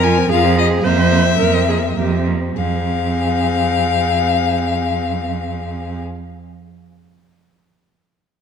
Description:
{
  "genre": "quick classical-period movement for string quartet",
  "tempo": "105 BPM",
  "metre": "3/4",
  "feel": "straight",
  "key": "F minor",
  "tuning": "A4 = 439 Hz",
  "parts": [
    { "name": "warm violin", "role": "melody", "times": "0.0-6.0 s", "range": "Eb5 to Ab5", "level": "-20 LUFS", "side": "left 10 dB", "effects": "none" },
    { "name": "rich violin", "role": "second line", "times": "0.0-6.0 s", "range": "Bb3 to Ab4", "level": "-25 LUFS", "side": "left 3 dB", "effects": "none" },
    { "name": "rich viola", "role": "accompaniment", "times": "0.0-6.0 s", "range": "C4 to C5", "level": "-22 LUFS", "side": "right 1 dB", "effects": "none" },
    { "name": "clear cello", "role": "bass", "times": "0.0-6.0 s", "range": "F2", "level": "-18 LUFS", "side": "right 4 dB", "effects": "none" }
  ],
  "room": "moderate scoring stage reverb, RT60 1.9 s",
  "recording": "dark, warm production",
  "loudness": "-15 LUFS",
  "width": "side -7 dB against mid",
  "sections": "0.0-2.6 A section; 2.6-6.0 B section",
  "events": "slowing down 0.0-2.6",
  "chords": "0.0 Fm; 0.8 C7/F; 2.6 Fm"
}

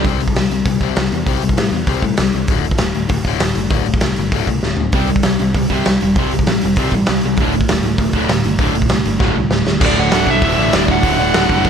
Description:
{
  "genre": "punk rock",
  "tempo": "197 BPM",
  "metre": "4/4",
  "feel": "straight",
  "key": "unclear",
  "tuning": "A4 = 440 Hz",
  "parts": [
    { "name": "distorted electric guitar", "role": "riff", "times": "0.0, 4.9-11.7 s", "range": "D2 to C4", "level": "-19 LUFS", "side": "right 13 dB", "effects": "distortion" },
    { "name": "distorted electric guitar", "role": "riff", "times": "0.0-0.1, 9.8-11.7 s", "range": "D2 to D3", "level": "-21 LUFS", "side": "right 2 dB", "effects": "distortion" },
    { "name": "overdriven semi-hollow guitar", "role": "riff", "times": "0.0-11.7 s", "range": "D2 to C4", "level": "-20 LUFS", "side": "left 15 dB", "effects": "none" },
    { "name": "picked electric bass", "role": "bass", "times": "0.0-11.7 s", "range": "D1 to A2", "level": "-21 LUFS", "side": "equal", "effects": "none" },
    { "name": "raw garage drum kit", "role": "drums", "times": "0.0-11.7 s", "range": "crash cymbal, hi-hat, kick drum, snare drum, toms", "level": "-17 LUFS", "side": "equal", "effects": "none" },
    { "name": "bluesy overdriven lead guitar", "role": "melody", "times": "9.9-11.7 s", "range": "D5 to F#5", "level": "-18 LUFS", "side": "right 2 dB", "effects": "distortion, ping-pong delay" }
  ],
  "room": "little or no reverb",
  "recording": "none",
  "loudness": "-13 LUFS",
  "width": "side -7 dB against mid",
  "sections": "0.1-9.8 A section; 9.8-11.7 B section",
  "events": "drum fill 4.6-4.9, 9.2-9.8",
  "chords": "0.1 C5; 2.5 D5; 4.9 C5; 7.4 D5; 9.8 D"
}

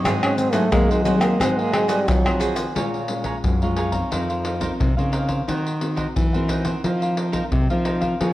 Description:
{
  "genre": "samba and choro",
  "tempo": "88 BPM",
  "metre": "4/4",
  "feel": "straight",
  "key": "Bb minor",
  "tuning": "A4 = 440 Hz",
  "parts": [
    { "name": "cavaquinho", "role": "accompaniment", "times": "0.0-8.3 s", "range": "Eb4 to Bb5", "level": "-28 LUFS", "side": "right 2 dB", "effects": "none" },
    { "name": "nylon-string guitar", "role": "accompaniment", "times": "0.0-8.3 s", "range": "Ab2 to Bb4", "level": "-26 LUFS", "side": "left 2 dB", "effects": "none" },
    { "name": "nylon-string guitar", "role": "bass", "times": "0.0-8.3 s", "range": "F2 to Ab3", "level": "-24 LUFS", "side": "equal", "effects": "none" },
    { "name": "egg shaker, surdo, pandeiro and tamborim", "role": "percussion", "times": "0.1-8.3 s", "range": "none", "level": "-24 LUFS", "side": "left 1 dB", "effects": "none" },
    { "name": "breathy trombone", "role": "melody", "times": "0.2-2.6 s", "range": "Eb3 to Db4", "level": "-22 LUFS", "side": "right 1 dB", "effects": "none" }
  ],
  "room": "moderate large studio reverb, RT60 1.4 s",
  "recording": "worn, warbling old tape, cassette tape, warbly pitch drift",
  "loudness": "-19 LUFS",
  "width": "side -15 dB against mid",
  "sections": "0.0-2.8 A section; 2.8-8.3 B section",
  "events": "trombone solo 0.0-2.8",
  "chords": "0.0 Ab7; 2.8 Bbm7; 4.1 F7sus4; 5.5 Cm7b5/Eb; 6.8 F7sus4"
}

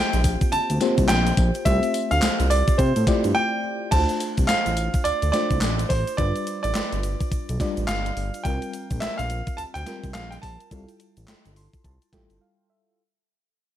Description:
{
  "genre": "R&B, new jack swing",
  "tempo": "106 BPM",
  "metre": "4/4",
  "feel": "swing 61% on 16ths",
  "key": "unclear",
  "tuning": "A4 = 442 Hz",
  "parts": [
    { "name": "clear grand piano", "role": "melody", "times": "0.0-12.4 s", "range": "C5 to A5", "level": "-26 LUFS", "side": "right 2 dB", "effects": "none" },
    { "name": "FM electric piano with auto-pan", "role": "accompaniment", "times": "0.0-13.0 s", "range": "G3 to C6", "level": "-29 LUFS", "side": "left 1 dB", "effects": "none" },
    { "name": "smooth synth bass", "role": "bass", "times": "0.0-12.4 s", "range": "G1 to C3", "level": "-25 LUFS", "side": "equal", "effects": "none" },
    { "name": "gated 80s digital drum machine", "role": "drums", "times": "0.1-12.4 s", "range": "crash cymbal, handclaps, hi-hat, kick drum, snare drum, tambourine", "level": "-24 LUFS", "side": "equal", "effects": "gated reverb, gated reverb snare, overdrive" },
    { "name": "tube shaker", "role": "percussion", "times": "0.1-12.4 s", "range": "none", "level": "-42 LUFS", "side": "right 5 dB", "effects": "none" }
  ],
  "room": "digital ambience",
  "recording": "none",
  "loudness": "-20 LUFS",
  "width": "side -11 dB against mid",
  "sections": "0.0-3.9 A section; 3.9-13.0 B section",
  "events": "break 3.4-3.9, 12.4-13.0; fade-out 3.9-13.0; FM electric piano fill 11.3-13.0",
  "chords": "0.0 C7sus4; 1.7 Fmaj9/C; 3.9 Dm7; 6.2 G7; 8.4 C7sus4; 10.7 Fmaj9"
}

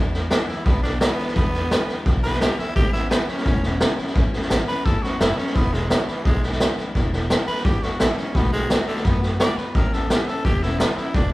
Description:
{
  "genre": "rockabilly",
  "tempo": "172 BPM",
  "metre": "4/4",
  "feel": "straight",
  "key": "E mixolydian",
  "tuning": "A4 = 440 Hz",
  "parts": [
    { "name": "picked steel-string acoustic guitar", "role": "accompaniment", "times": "0.0-11.3 s", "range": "E2 to F#4", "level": "-30 LUFS", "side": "left 2 dB", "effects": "none" },
    { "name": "upright bass", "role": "bass", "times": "0.0-11.3 s", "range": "E1 to F#2", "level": "-26 LUFS", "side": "equal", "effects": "none" },
    { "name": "raw garage drum kit", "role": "drums", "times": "0.1-11.2 s", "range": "hi-hat, kick drum, snare drum", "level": "-20 LUFS", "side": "equal", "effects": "none" },
    { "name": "growling tenor saxophone", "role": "melody", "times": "0.3-11.3 s", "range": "D3 to D5", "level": "-28 LUFS", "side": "equal", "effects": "none" }
  ],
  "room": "light reverb",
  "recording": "band playing live in one room",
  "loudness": "-18 LUFS",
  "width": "side -19 dB against mid",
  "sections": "0.0-11.3 A section",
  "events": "none",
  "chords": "0.0 E7; 2.8 A7; 5.6 E7; 8.3 B7; 9.7 A7"
}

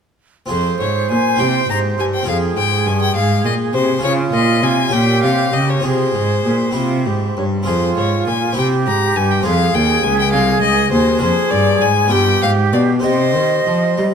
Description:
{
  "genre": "classical, baroque-style sonata movement with continuo",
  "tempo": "67 BPM (dotted quarters)",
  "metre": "6/8",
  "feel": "rubato",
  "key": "F minor",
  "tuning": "A4 = 439 Hz",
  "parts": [
    { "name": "clear violin", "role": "melody", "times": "0.5-14.0 s", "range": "C5 to Bb5", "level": "-19 LUFS", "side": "left 7 dB", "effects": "none" },
    { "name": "concert flute", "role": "second line", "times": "0.5-14.1 s", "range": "F4 to Eb5", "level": "-20 LUFS", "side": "right 6 dB", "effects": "none" },
    { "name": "harpsichord", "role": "accompaniment", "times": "0.5-14.1 s", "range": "C2 to Bb4", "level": "-20 LUFS", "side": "left 2 dB", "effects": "none" },
    { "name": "warm cello", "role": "bass", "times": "0.5-14.1 s", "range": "C2 to G3", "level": "-19 LUFS", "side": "right 2 dB", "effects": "none" }
  ],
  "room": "moderate scoring stage reverb, RT60 2.0 s",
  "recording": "none",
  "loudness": "-13 LUFS",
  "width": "side -7 dB against mid",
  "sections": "0.5-14.1 A section",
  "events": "none",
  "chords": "0.5 Fm; 1.4 C; 2.3 Fm; 4.0 Db; 4.9 Gdim/Bb; 5.8 Fm; 6.8 C; 7.7 Fm; 8.6 C; 9.5 Fm; 11.2 Ddim/F; 12.1 G7; 13.0 Cm"
}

